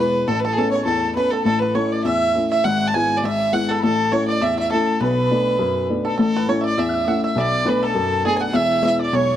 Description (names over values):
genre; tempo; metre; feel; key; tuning
celtic folk, Celtic reel; 203 BPM; 4/4; swing 55% on 8ths; unclear; A4 = 445 Hz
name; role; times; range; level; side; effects
rich fiddle; melody; 0.0-9.4 s; G#4 to A5; -20 LUFS; right 1 dB; tape echo
bluegrass banjo; second line; 0.0-9.4 s; G#4 to G#5; -29 LUFS; right 6 dB; none
mellow tin whistle; second line; 0.0-9.4 s; G#5 to G#6; -31 LUFS; left 2 dB; none
warm upright piano; accompaniment; 0.0-9.4 s; E1 to E4; -20 LUFS; left 2 dB; none
room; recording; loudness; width
moderate small room reverb, RT60 0.5 s; dark, warm production; -17 LUFS; side -11 dB against mid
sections
0.0-6.2 A section; 6.2-9.4 A section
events
none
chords
0.3 Aadd9; 1.5 A; 2.6 E/G#; 3.8 A; 5.0 Bm7; 6.2 A; 7.4 Bm7; 8.5 E